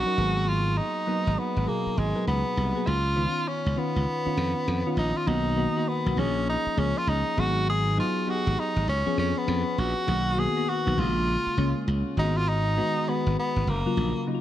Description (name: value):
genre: R&B, new jack swing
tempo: 100 BPM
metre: 4/4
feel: swing 63% on 16ths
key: G# dorian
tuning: A4 = 441 Hz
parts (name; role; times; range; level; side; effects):
- bright tenor saxophone; melody; 0.0-14.3 s; G#3 to G#4; -28 LUFS; equal; ping-pong delay
- soft electric-piano-like synth keys; accompaniment; 0.0-14.4 s; B2 to B4; -29 LUFS; left 1 dB; chorus
- glassy slap bass; bass; 0.0-14.1 s; F#1 to E#2; -26 LUFS; equal; none
room: light reverb, small room ambience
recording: dark, warm production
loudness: -23 LUFS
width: side -12 dB against mid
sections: 0.0-5.3 A section; 5.3-14.4 B section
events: none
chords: 0.2 G#m9; 2.9 C#9; 5.3 Bmaj7; 6.2 A#m7; 7.4 G#m7; 8.9 C#7; 10.1 Bmaj7; 11.0 A#m7; 12.2 G#m7; 13.7 F#maj7